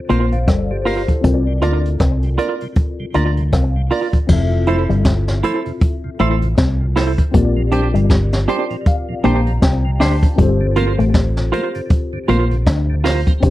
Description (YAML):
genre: lovers rock reggae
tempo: 79 BPM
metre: 4/4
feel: swing 58% on 16ths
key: F major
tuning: A4 = 441 Hz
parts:
  - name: tine electric piano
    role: accompaniment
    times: 0.0-13.5 s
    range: C4 to Bb5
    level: -25 LUFS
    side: left 4 dB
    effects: ensemble chorus, slapback echo
  - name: tonewheel organ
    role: accompaniment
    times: 0.1-13.3 s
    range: F2 to F4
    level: -28 LUFS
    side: right 1 dB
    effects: slow rotary speaker, slapback echo
  - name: electric guitar with an envelope filter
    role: riff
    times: 0.1-13.5 s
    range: F3 to D4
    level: -21 LUFS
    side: left 4 dB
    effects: spring reverb, slapback echo
  - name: semi-hollow electric guitar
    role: stabs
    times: 0.1-13.2 s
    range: D4 to D5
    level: -19 LUFS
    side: right 4 dB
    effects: wide subtle chorus, slapback echo
  - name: vintage muted fingered electric bass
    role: bass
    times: 0.1-13.5 s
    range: F1 to D2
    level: -17 LUFS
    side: equal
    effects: none
  - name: jazz brush drum kit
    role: drums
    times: 0.1-13.5 s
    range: crash cymbal, hi-hat, kick drum, rim click, snare drum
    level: -16 LUFS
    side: equal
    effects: none
room: little or no reverb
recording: dry, close 1970s-style studio recording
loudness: -14 LUFS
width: side -15 dB against mid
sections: 0.0-4.3 A section; 4.3-13.5 B section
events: tine electric piano fill 3.1-4.3, 8.1-10.4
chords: 0.0 Gm11; 1.2 C9sus4; 4.3 Fmaj7; 7.3 Bb69